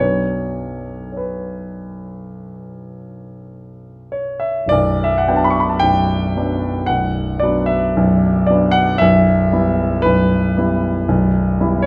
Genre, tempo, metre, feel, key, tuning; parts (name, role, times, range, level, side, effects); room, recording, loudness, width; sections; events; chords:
classical, romantic nocturne for solo piano; 49-59 BPM; 4/4; rubato; B minor; A4 = 444 Hz
warm concert grand piano; solo; 0.0-11.9 s; B0 to C#6; -18 LUFS; equal
moderate recital hall reverb, RT60 1.5 s; close, detailed microphones; -17 LUFS; mono
0.0-4.7 A section; 4.7-11.9 B section
0.0 Bm; 9.0 Em/B